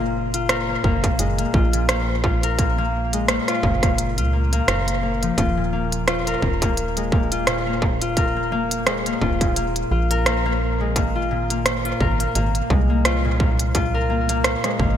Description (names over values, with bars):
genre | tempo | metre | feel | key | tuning
IDM | 86 BPM | 4/4 | swing 56% on 16ths | unclear | A4 = 435 Hz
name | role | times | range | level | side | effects
concert harp | arpeggios | 0.0-15.0 s | Bb2 to Bb4 | -22 LUFS | left 3 dB | digital delay
metallic FM bass | bass | 0.0-15.0 s | Eb1 to Db2 | -24 LUFS | right 1 dB | none
industrial drum kit | drums | 0.3-14.8 s | hi-hat, rim click | -24 LUFS | right 1 dB | digital delay
electronic kick drum | drums | 0.8-15.0 s | none | -22 LUFS | right 1 dB | distortion
room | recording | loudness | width
moderate lush hall reverb, RT60 3.0 s | bright 1980s-style digital production | -18 LUFS | side -10 dB against mid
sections
0.0-15.0 A section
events
none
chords
0.0 Gbmaj7; 5.4 Eb5; 11.0 Ab